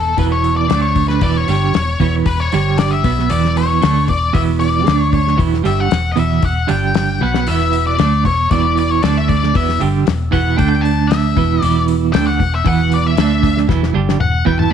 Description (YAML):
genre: psychedelic rock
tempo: 115 BPM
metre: 4/4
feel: straight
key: E dorian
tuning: A4 = 436 Hz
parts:
  - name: octave-fuzz lead guitar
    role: melody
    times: 0.0-14.7 s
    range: A4 to A5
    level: -19 LUFS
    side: left 5 dB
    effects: distortion, slapback echo
  - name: twelve-string electric guitar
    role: riff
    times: 0.0-14.7 s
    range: E2 to D4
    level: -16 LUFS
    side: right 8 dB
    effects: tremolo
  - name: vintage muted fingered electric bass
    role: bass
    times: 0.0-14.7 s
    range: E1 to D2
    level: -19 LUFS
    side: left 2 dB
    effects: none
  - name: cloth-damped thuddy drum kit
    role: drums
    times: 0.2-14.7 s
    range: hi-hat, kick drum, snare drum, toms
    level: -19 LUFS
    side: left 6 dB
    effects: none
room: light reverb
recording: 1960s-style stereo with parts hard left and right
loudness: -13 LUFS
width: side -8 dB against mid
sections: 0.0-14.7 A section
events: lead electric guitar solo 0.0-14.7; drum fill 7.2, 13.7-14.7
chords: 0.0 E5; 0.7 D5; 1.2 Em; 2.5 G5; 3.0 E5; 4.9 D5; 5.4 Em; 6.7 G5; 7.2 E5; 9.0 D5; 9.6 Em; 10.6 D5; 11.4 E5; 13.2 D5; 13.7 Em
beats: 0.18 0.70 | 1.22 1.75 2.27 2.79 | 3.31 3.83 4.35 4.87 | 5.39 5.91 6.43 6.95 | 7.47 7.99 8.51 9.03 | 9.55 10.07 10.59 11.11 | 11.63 12.15 12.66 13.18 | 13.70 14.22